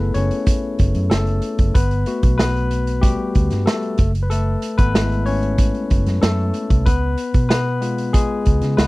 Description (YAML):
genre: lush 1970s-style soul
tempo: 94 BPM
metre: 4/4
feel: straight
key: unclear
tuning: A4 = 440 Hz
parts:
  - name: barky tine electric piano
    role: accompaniment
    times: 0.0-8.9 s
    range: G3 to C#5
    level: -22 LUFS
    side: left 3 dB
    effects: none
  - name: vintage muted fingered electric bass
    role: bass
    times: 0.0-8.9 s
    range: F#1 to C#3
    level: -20 LUFS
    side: equal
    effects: none
  - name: vintage drum kit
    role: drums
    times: 0.1-8.9 s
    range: hi-hat, kick drum, snare drum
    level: -18 LUFS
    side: right 1 dB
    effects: none
room: little or no reverb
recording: dry, close 1970s-style studio recording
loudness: -16 LUFS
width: side -20 dB against mid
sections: 0.0-8.9 A section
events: tine electric piano solo 0.0-8.9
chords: 0.0 F#m7; 1.7 Gmaj7; 4.0 F#m7; 6.9 C#7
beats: 0.47 1.11 | 1.75 2.39 3.03 3.67 | 4.31 4.95 5.59 6.23 | 6.87 7.50 8.14 8.78